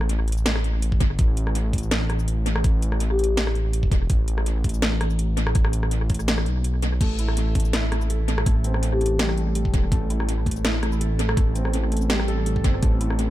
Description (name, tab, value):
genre	half-time drum and bass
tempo	165 BPM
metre	4/4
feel	swing 53% on 16ths, half-time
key	A minor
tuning	A4 = 440 Hz
part	dark detuned saw bass	bass	0.0-13.3 s	E1 to B1	-23 LUFS	equal	none
part	drum and bass drum kit	drums	0.0-13.3 s	crash cymbal, hi-hat, rim click, shaker, snare drum	-28 LUFS	equal	tape echo
part	electronic kick drum	drums	0.9-12.9 s	none	-21 LUFS	equal	none
part	marimba with soft mallets	melody	3.1-3.3, 8.9-9.1 s	G4	-30 LUFS	left 3 dB	vintage 12-bit sampler grit, tape echo
part	felt-muted upright piano	arpeggios	7.0-13.3 s	G3 to A4	-29 LUFS	right 2 dB	analog delay
room	little or no reverb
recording	echo-heavy mix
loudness	-20 LUFS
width	side -14 dB against mid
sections	0.0-13.3 A section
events	kick drops out 6.6-7.0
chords	0.0 Am